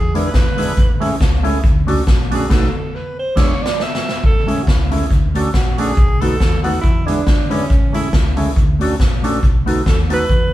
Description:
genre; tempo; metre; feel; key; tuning
ska; 139 BPM; 4/4; swing 55% on 8ths; A major; A4 = 443 Hz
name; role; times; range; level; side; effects
breathy alto saxophone; melody; 0.0-10.5 s; C#4 to E5; -23 LUFS; right 2 dB; none
hollow-body short-scale fingered electric bass; bass; 0.0-10.5 s; E1 to E2; -21 LUFS; equal; none
mellow electric guitar; accompaniment; 0.1-10.2 s; G#3 to F#4; -23 LUFS; right 2 dB; none
percussive tonewheel organ; stabs; 0.1-10.2 s; A3 to A4; -24 LUFS; left 1 dB; slow rotary speaker
street-band drum kit; drums; 0.2-10.4 s; crash cymbal, hi-hat, kick drum, snare drum; -16 LUFS; equal; none
room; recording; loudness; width
moderate studio reverb, RT60 0.8 s; band playing live in one room, faint mains hum; -13 LUFS; side -14 dB against mid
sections
0.0-4.2 A section; 4.2-10.5 A section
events
alto saxophone solo 0.0-4.2, 4.2-10.5; drum fill 2.5-4.2; band accent 2.5-4.2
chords
0.0 E7; 0.8 Amaj7; 1.6 Dmaj7; 2.5 B7; 3.4 E7; 4.2 Amaj7; 5.1 Dmaj7; 6.0 B7; 6.8 E7; 7.7 Amaj7; 8.6 Dmaj7; 9.4 B7

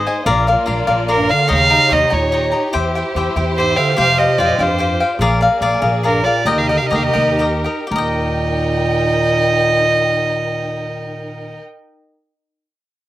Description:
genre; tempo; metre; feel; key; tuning
mexican folk, mariachi; 75-98 BPM (dotted quarters); 6/8; straight; Eb major; A4 = 436 Hz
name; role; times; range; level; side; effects
rich violin; melody; 0.0-11.6 s; Bb4 to F5; -17 LUFS; right 1 dB; slapback echo
mellow bass clarinet; second line; 0.0-11.6 s; G2 to D3; -22 LUFS; right 3 dB; none
cavaquinho; accompaniment; 0.0-11.7 s; D4 to Bb5; -18 LUFS; left 3 dB; none
warm studio violin section; sustained chords; 0.0-11.6 s; Ab3 to G5; -23 LUFS; right 1 dB; none
upright bass; bass; 0.0-11.6 s; Bb1 to F2; -22 LUFS; equal; none
room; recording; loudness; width
little or no reverb; recorded outdoors, with no room sound; -13 LUFS; side -14 dB against mid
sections
0.0-7.9 A section; 7.9-11.1 B section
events
slowing down 5.2-7.9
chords
0.3 Bb; 1.5 Eb7; 2.7 C/E; 4.0 Fsus2; 5.2 Bb7; 6.5 Eb

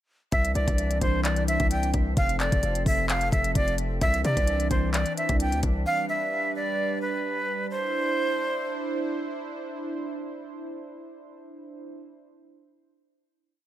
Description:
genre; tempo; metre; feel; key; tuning
hip hop, trap; 130 BPM; 4/4; half-time; C major; A4 = 440 Hz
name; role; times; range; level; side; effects
breathy bright jazz flute; melody; 0.3-9.1 s; B4 to G5; -27 LUFS; right 1 dB; tape echo
warm analog pad; sustained chords; 0.3-12.0 s; E3 to C5; -32 LUFS; right 1 dB; chorus
distorted 808-style bass; bass; 0.3-5.9 s; F1 to C3; -27 LUFS; equal; distortion
trap drum kit; drums; 0.3-5.7 s; handclaps, hi-hat, kick drum; -27 LUFS; equal; none
room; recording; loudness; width
little or no reverb; none; -24 LUFS; side -12 dB against mid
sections
0.3-7.7 hook; 7.7-11.4 final chord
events
none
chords
0.3 Cadd9; 2.2 F; 4.0 Cadd9; 5.9 G; 7.7 Cadd9

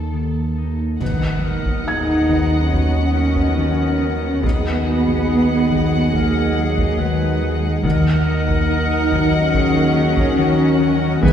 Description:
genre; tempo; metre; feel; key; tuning
cinematic, suspense film score; 70 BPM; 4/4; straight; Eb minor; A4 = 440 Hz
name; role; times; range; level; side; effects
muted studio violin section; melody; 0.0-11.3 s; A4 to G#5; -27 LUFS; left 6 dB; none
concert harp; riff; 0.0-11.3 s; Eb3 to Eb4; -24 LUFS; left 5 dB; none
muted symphonic cello section; bass; 0.0-11.3 s; Eb2 to D#4; -21 LUFS; right 1 dB; none
punchy sub bass; drone; 0.0-11.3 s; Eb2; -25 LUFS; right 1 dB; none
felt-muted upright piano; texture; 0.0-4.5 s; Ab6 to A6; -32 LUFS; equal; none
muted symphonic violin section; second line; 1.0-11.3 s; D#5 to E5; -30 LUFS; left 2 dB; none
warm clarinet; second line; 1.0-11.3 s; F#4 to B4; -28 LUFS; left 1 dB; none
muted symphonic viola section; accompaniment; 1.0-11.3 s; B3 to Bb4; -30 LUFS; right 3 dB; none
dark French horn section; sustained chords; 1.0-11.3 s; Ab3 to D#4; -29 LUFS; equal; none
warm trombone section; sustained chords; 1.0-11.3 s; B2 to G#3; -27 LUFS; right 3 dB; none
muted symphonic double bass section; bass; 1.0-11.3 s; D#2; -25 LUFS; right 2 dB; none
taiko ensemble; drums; 1.0-11.3 s; none; -24 LUFS; equal; none
timpani; percussion; 1.0-2.3, 7.8-11.3 s; D#3; -22 LUFS; right 3 dB; none
impact; sound effects; 1.0-4.4 s; none; -30 LUFS; equal; none
room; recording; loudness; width
wet scoring stage reverb, RT60 1.6 s; heard from further back in the room; -15 LUFS; side -9 dB against mid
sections
0.0-1.0 A section; 1.0-11.3 B section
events
impact 1.0-4.4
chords
0.0 N.C.; 1.0 B/D#; 4.4 Abm7/Eb; 7.8 Ebm7

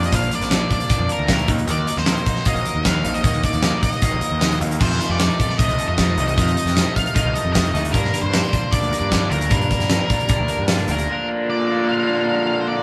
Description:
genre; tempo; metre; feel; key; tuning
indie rock; 153 BPM; 4/4; straight; Bb major; A4 = 440 Hz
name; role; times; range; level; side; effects
overdriven electric guitar; riff; 0.0-12.8 s; F2 to Eb4; -28 LUFS; equal; none
overdriven electric guitar; riff; 0.0-12.8 s; Bb2 to F5; -30 LUFS; equal; none
fuzz picked electric bass; bass; 0.0-11.1 s; Bb1 to G2; -26 LUFS; equal; overdrive
big rock drum kit; drums; 0.0-11.1 s; crash cymbal, hi-hat, kick drum, snare drum; -22 LUFS; equal; none
octave-fuzz lead guitar; melody; 0.1-12.8 s; Bb4 to F5; -27 LUFS; equal; distortion
room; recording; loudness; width
moderate large studio reverb, RT60 1.5 s; band playing live in one room, lossy compression artefacts; -19 LUFS; mono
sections
0.0-11.1 A section; 11.1-12.8 B section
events
none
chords
0.0 Bbmaj7; 1.5 Ebmadd9; 4.8 F7; 7.9 Gm7; 11.1 Bb

